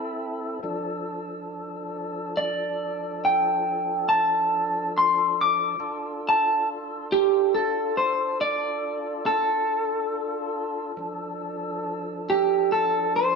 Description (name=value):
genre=blues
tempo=46 BPM (dotted quarters)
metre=12/8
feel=straight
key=unclear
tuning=A4 = 441 Hz
part: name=tonewheel organ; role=sustained chords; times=0.0-13.4 s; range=F3 to A4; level=-31 LUFS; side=equal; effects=slow rotary speaker, overdrive
part: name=electric guitar through a small old amp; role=melody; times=2.4-13.4 s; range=G4 to D6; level=-22 LUFS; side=equal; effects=none
room=moderate stone room reverb, RT60 1.2 s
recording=band playing live in one room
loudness=-22 LUFS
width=side -4 dB against mid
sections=0.0-13.4 A section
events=none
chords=0.0 Am; 0.6 Dm